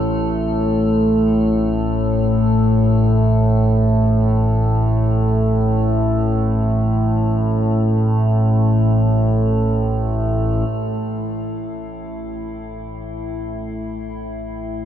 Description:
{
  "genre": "dark ambient drone",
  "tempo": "free time",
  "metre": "none",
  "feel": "none",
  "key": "unclear",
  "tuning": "A4 = 440 Hz",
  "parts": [
    { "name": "analog drone", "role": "drone", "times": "0.0-14.9 s", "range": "A1 to A2", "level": "-16 LUFS", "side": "equal", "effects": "chorus" },
    { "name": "metallic inharmonic drone", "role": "texture", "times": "0.0-14.9 s", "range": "E4 to A4", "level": "-30 LUFS", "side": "equal", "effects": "chorus, built-in reverb" }
  ],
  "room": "wet cathedral reverb, RT60 7.3 s",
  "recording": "in a vast, echoing space",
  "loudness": "-15 LUFS",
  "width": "side -10 dB against mid",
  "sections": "0.0-10.7 A section; 10.7-14.9 B section",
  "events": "fade-out on synth drone 0.0-10.7",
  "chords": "0.0 N.C.; 10.7 A5",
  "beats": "free time"
}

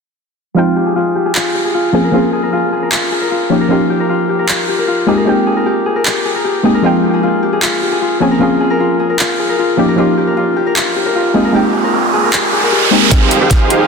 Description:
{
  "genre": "future bass",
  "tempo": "153 BPM",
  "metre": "4/4",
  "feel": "half-time",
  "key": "Ab major",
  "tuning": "A4 = 440 Hz",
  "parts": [
    { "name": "soft round pluck", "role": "accompaniment", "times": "0.5-13.9 s", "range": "F3 to G5", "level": "-15 LUFS", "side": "equal", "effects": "chorus, sidechain pumping, dub echo" },
    { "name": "Celtic harp", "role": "arpeggios", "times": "0.6-13.9 s", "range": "F4 to Bb4", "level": "-15 LUFS", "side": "left 3 dB", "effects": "sidechain pumping, low-pass filter, dub echo" },
    { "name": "trap drum kit", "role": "drums", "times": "1.4-13.8 s", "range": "handclaps, hi-hat, snare drum", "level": "-20 LUFS", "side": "right 1 dB", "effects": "none" },
    { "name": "riser", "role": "sound effects", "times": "10.9-13.9 s", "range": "none", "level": "-16 LUFS", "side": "right 4 dB", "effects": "none" },
    { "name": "dense compressed supersaw", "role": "riff", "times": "13.1-13.9 s", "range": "Eb4 to F5", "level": "-12 LUFS", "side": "right 3 dB", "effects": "vintage 12-bit sampler grit, sidechain pumping, low-pass filter" },
    { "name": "fat analog bass", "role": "bass", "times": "13.1-13.9 s", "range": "F1", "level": "-26 LUFS", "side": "equal", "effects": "none" },
    { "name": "electronic kick drum", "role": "drums", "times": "13.1-13.6 s", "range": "none", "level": "-12 LUFS", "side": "equal", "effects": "none" }
  ],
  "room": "moderate huge ambient reverb, RT60 3.9 s",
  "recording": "dense, heavily limited modern master",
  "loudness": "-11 LUFS",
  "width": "side -5 dB against mid",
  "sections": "0.6-13.1 A section",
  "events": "filter sweep on harp 0.6-13.1; riser 10.9-13.1, 13.1-13.9; drum fill 13.1-13.9",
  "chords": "0.6 Fm9; 1.9 Bbm9; 3.5 Eb9; 5.1 Abmaj9; 6.8 Fm9; 8.2 Bbm9; 9.8 Eb9; 11.3 Abmaj9; 13.1 Fm9",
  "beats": "| 0.56 0.96 1.35 1.74 | 2.13 2.53 2.92 3.31 | 3.70 4.09 4.49 4.88 | 5.27 5.66 6.05 6.45 | 6.84 7.23 7.62 8.02 | 8.41 8.80 9.19 9.59 | 9.98 10.37 10.76 11.15 | 11.55 11.94 12.33 12.72 | 13.11 13.51"
}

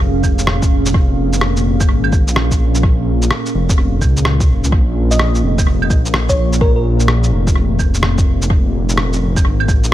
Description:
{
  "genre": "future garage",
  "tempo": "127 BPM",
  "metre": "4/4",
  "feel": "swing 65% on 16ths",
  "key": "Bb minor",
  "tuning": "A4 = 440 Hz",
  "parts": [
    { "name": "warbly tape-like pad", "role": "sustained chords", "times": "0.0-9.9 s", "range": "Bb2 to F5", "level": "-21 LUFS", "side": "equal", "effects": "chorus, built-in reverb, sidechain pumping" },
    { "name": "dark detuned saw bass", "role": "bass", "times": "0.0-9.9 s", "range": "F1 to Db2", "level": "-16 LUFS", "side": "equal", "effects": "sidechain pumping" },
    { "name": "electronic kick drum", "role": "drums", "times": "0.2-9.8 s", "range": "none", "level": "-14 LUFS", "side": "equal", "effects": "none" },
    { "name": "electronic shaker, claves and rim click", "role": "drums", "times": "0.2-9.9 s", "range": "none", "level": "-20 LUFS", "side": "right 1 dB", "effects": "tape echo" },
    { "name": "bell-like FM electric piano", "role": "melody", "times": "5.1-6.8 s", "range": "Bb4 to Eb5", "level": "-22 LUFS", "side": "equal", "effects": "chorus, cassette tape, dub echo" }
  ],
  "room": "digital ambience",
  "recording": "echo-heavy mix",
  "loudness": "-12 LUFS",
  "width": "side -13 dB against mid",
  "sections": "0.0-9.9 A section",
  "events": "none",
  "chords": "0.0 Bbm7",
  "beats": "0.00 0.47 | 0.95 1.42 1.89 2.36 | 2.84 3.31 3.78 4.25 | 4.72 5.20 5.67 6.14 | 6.62 7.09 7.56 8.03 | 8.51 8.98 9.45 9.92"
}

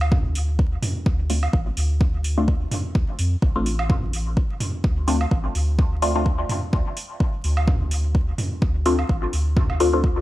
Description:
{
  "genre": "dub techno",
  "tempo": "127 BPM",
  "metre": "4/4",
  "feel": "swing 56% on 16ths",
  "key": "unclear",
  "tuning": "A4 = 444 Hz",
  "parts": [
    { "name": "soft dub sub bass", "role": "bass", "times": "0.0-10.2 s", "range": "A1 to F2", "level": "-23 LUFS", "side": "equal", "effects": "sidechain pumping" },
    { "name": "electronic woodblock and toms", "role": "percussion", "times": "0.0-9.8 s", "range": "none", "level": "-29 LUFS", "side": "right 1 dB", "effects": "overdrive, sidechain pumping on perc, studio reverb, sidechain pumping on toms, dub echo" },
    { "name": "electronic kick drum", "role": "drums", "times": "0.1-10.1 s", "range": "none", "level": "-21 LUFS", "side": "equal", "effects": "overdrive, studio reverb" },
    { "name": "electronic hi-hat", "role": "drums", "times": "0.4-9.9 s", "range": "none", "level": "-32 LUFS", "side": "right 2 dB", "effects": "studio reverb" },
    { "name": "filtered dub chord stab", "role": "stabs", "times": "1.3-10.0 s", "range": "A3 to F4", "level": "-24 LUFS", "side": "left 2 dB", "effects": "phaser, sidechain pumping, dub echo" }
  ],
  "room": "little or no reverb",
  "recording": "vinyl crackle",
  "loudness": "-19 LUFS",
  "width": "side -16 dB against mid",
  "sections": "0.0-10.2 A section",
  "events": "none",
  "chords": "0.0 D5",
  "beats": "| 0.12 0.59 1.06 1.53 | 2.01 2.48 2.95 3.42 | 3.90 4.37 4.84 5.31 | 5.79 6.26 6.73 7.20 | 7.68 8.15 8.62 9.09 | 9.56 10.04"
}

